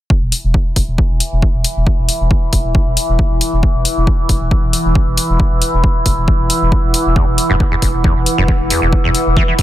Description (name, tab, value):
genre	driving peak-time techno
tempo	136 BPM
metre	4/4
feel	straight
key	unclear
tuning	A4 = 440 Hz
part	overtone-sweeping drone	drone	1.2-9.6 s	E3 to E4	-20 LUFS	left 1 dB	chorus, built-in reverb, sidechain pumping
part	electronic kick drum	drums	0.1-9.6 s	none	-14 LUFS	equal	overdrive
part	warbly tape-like pad	texture	1.3-9.6 s	E4 to F#5	-25 LUFS	right 3 dB	chorus, built-in reverb, sidechain pumping
part	saturated sub bass	bass	0.2-9.6 s	E1	-18 LUFS	equal	overdrive, sidechain pumping, low-pass filter
part	electronic hi-hat	drums	0.3-9.6 s	none	-17 LUFS	left 3 dB	overdrive
part	acid bass, saw	riff	7.2-9.6 s	E2 to E3	-18 LUFS	equal	wide subtle chorus, sidechain pumping, ping-pong delay
room	little or no reverb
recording	none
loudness	-12 LUFS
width	side -14 dB against mid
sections	0.1-9.6 A section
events	fade-in on ambient pad 0.1-9.6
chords	0.1 E5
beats	| 0.10 0.54 0.98 1.43 | 1.87 2.31 2.75 3.19 | 3.63 4.07 4.51 4.95 | 5.40 5.84 6.28 6.72 | 7.16 7.60 8.04 8.48 | 8.93 9.37